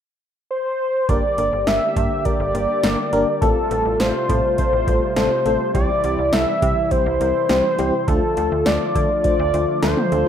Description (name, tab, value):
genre	synth-pop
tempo	103 BPM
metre	4/4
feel	straight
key	G dorian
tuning	A4 = 440 Hz
part	wide unison lead	melody	0.5-10.3 s	A4 to E5	-20 LUFS	left 1 dB	analog delay
part	FM electric piano with tremolo	accompaniment	1.1-10.3 s	G3 to C5	-25 LUFS	left 2 dB	none
part	brassy analog pad	sustained chords	1.1-10.3 s	C3 to G4	-26 LUFS	equal	chorus
part	slap-like FM bass	bass	1.1-10.2 s	G1 to D3	-26 LUFS	right 1 dB	none
part	electro analog drum machine	drums	1.1-10.3 s	hi-hat, kick drum, snare drum, toms	-23 LUFS	right 1 dB	overdrive
room	moderate plate reverb, RT60 1.6 s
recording	rough home demo mix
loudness	-17 LUFS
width	side -9 dB against mid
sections	0.0-1.1 A section; 1.1-10.3 B section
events	none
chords	0.0 N.C.; 1.1 Gm; 3.4 Fadd9/A; 5.8 C; 8.1 Dm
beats	0.51 | 1.09 1.67 2.25 2.84 | 3.42 4.00 4.58 5.17 | 5.75 6.33 6.92 7.50 | 8.08 8.66 9.24 9.83